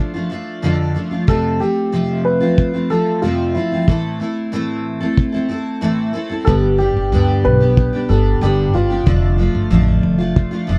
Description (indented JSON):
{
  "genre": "acoustic pop",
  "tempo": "92 BPM",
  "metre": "4/4",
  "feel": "straight",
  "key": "A minor",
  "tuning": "A4 = 440 Hz",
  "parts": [
    { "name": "picked steel-string acoustic guitar", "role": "accompaniment", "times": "0.0-10.8 s", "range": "F2 to A4", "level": "-20 LUFS", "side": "equal", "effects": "double-tracked" },
    { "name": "dark upright piano", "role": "melody", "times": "1.3-9.7 s", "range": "E4 to B4", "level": "-22 LUFS", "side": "equal", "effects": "none" },
    { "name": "kick drum", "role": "drums", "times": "1.3-10.5 s", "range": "none", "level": "-16 LUFS", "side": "equal", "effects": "none" },
    { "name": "upright bass", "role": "bass", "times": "6.5-10.8 s", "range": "F1 to D2", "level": "-19 LUFS", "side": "equal", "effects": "none" }
  ],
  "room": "little or no reverb",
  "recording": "dry, close 1970s-style studio recording",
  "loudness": "-17 LUFS",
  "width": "mono",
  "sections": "0.0-10.8 A section",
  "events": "none",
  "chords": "0.0 Dm/F; 1.3 F; 3.9 Am; 6.5 G; 9.1 Dm/F"
}